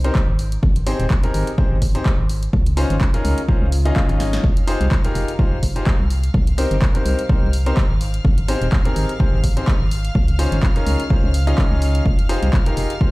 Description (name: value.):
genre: piano house.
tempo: 126 BPM.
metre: 4/4.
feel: swing 55% on 16ths.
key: F minor.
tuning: A4 = 439 Hz.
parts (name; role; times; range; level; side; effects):
bright grand piano; riff; 0.0-13.1 s; C4 to Eb5; -24 LUFS; left 1 dB; sidechain pumping, tape echo.
organ-like FM bass; bass; 0.0-12.9 s; Eb1 to Db2; -19 LUFS; equal; tube saturation, sidechain pumping.
punchy analog drum machine; drums; 0.0-13.0 s; handclaps, hi-hat, snare drum; -30 LUFS; equal; none.
electronic kick drum; drums; 0.2-13.1 s; none; -17 LUFS; equal; none.
swell; sound effects; 3.6-4.4 s; none; -32 LUFS; left 2 dB; none.
warm studio violin section; sustained chords; 4.4-13.1 s; F5 to F6; -33 LUFS; equal; sidechain pumping.
room: little or no reverb.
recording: played on a big sound system in a bare room, large studio reverb.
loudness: -16 LUFS.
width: side -21 dB against mid.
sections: 0.0-13.1 A section.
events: swell 3.6-4.4; drum fill 4.2.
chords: 0.4 Abmaj7; 2.5 Dbmaj9; 4.4 Fm9; 6.1 Cm7; 8.0 Abmaj7; 10.2 Dbmaj9; 12.1 Fm9.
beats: 0.15 | 0.63 1.10 1.58 2.06 | 2.53 3.01 3.48 3.96 | 4.44 4.91 5.39 5.87 | 6.34 6.82 7.29 7.77 | 8.25 8.72 9.20 9.68 | 10.15 10.63 11.10 11.58 | 12.06 12.53 13.01.